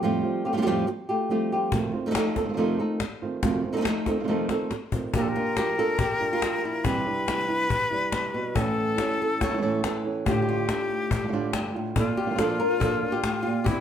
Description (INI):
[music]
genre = flamenco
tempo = 140 BPM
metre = 4/4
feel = straight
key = unclear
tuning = A4 = 440 Hz
[part]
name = flamenco guitar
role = melody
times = 0.0-13.8 s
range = G2 to C#5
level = -27 LUFS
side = equal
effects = plate reverb
[part]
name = flamenco guitar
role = stabs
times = 0.0-13.7 s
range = F2 to F4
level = -29 LUFS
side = right 4 dB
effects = none
[part]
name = cajon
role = percussion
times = 1.7-13.8 s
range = none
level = -30 LUFS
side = left 3 dB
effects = none
[part]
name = breathy bright jazz flute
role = second line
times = 5.2-13.8 s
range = E4 to B4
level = -28 LUFS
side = left 3 dB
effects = none
[sound]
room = moderate stone room reverb, RT60 0.9 s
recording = close, detailed microphones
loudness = -23 LUFS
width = side -9 dB against mid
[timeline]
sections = 0.0-5.1 A section; 5.1-13.8 B section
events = drum fill 4.5-5.1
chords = 0.0 Fadd9; 1.7 F7; 5.1 Bb; 6.9 Cadd9; 8.6 A; 10.3 Dm/A; 12.0 Bb